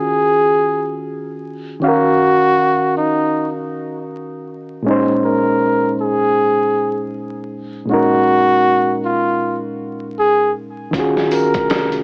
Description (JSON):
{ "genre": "lo-fi hip hop", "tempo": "79 BPM", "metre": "4/4", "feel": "swing 59% on 16ths", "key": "Eb dorian", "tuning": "A4 = 440 Hz", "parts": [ { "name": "trumpet with bucket mute", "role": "melody", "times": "0.0-12.0 s", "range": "Eb4 to Bb4", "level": "-18 LUFS", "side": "equal", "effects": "low-pass filter" }, { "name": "overdriven reed electric piano", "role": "accompaniment", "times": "0.0-12.0 s", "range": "Bb2 to F5", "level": "-21 LUFS", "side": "equal", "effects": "cassette tape, low-pass filter" }, { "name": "soft dub sub bass", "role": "bass", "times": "10.9-12.0 s", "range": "Eb1 to F1", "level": "-38 LUFS", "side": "equal", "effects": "none" }, { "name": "lo-fi sampler-style drum kit", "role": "drums", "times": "10.9-12.0 s", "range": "hi-hat, kick drum, snare drum", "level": "-24 LUFS", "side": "equal", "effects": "none" }, { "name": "tambourine", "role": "percussion", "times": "11.3-11.5 s", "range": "none", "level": "-38 LUFS", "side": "equal", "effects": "none" } ], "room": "moderate studio ambience, RT60 0.5 s", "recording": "vinyl crackle, small speaker sound", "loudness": "-16 LUFS", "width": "mono", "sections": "0.0-12.0 A section", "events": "none", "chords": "0.0 Ebm11; 4.9 Bbm11; 10.9 Ebm11", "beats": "0.29 1.05 | 1.81 2.57 3.33 4.09 | 4.85 5.61 6.37 7.13 | 7.89 8.65 9.41 10.17 | 10.93 11.69" }